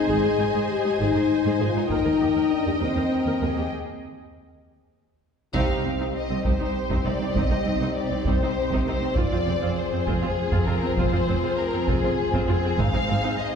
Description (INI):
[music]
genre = cinematic, epic orchestral film score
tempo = 66 BPM (dotted quarters)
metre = 6/8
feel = straight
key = unclear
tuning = A4 = 440 Hz
[part]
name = warm studio violin section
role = melody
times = 0.0-13.6 s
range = Ab4 to F5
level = -30 LUFS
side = left 3 dB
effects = none
[part]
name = warm symphonic violin section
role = second line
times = 0.0-13.6 s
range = G4 to Ab5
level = -31 LUFS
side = left 2 dB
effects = none
[part]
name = clear symphonic viola section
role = accompaniment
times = 0.0-13.6 s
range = C4 to Eb5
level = -31 LUFS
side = right 2 dB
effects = none
[part]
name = dark French horn section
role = sustained chords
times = 0.0-13.6 s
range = C4 to Ab4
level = -26 LUFS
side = left 4 dB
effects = none
[part]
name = clear symphonic double bass section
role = bass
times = 0.1-13.2 s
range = F1 to Eb2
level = -31 LUFS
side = right 2 dB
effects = none
[part]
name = dark symphonic cello section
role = bass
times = 0.1-13.3 s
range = C2 to Ab2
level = -29 LUFS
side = right 2 dB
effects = none
[part]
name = taiko ensemble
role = drums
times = 1.9-13.4 s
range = none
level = -28 LUFS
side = right 1 dB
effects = none
[sound]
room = wet scoring stage reverb, RT60 1.8 s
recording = heard from further back in the room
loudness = -21 LUFS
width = side -6 dB against mid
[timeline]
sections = 0.0-5.5 A section; 5.5-13.6 A section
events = break 3.7-5.5; band accent 5.5-6.1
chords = 0.0 Ab; 1.9 Eb; 5.5 Cm; 9.2 Fm; 12.8 Ab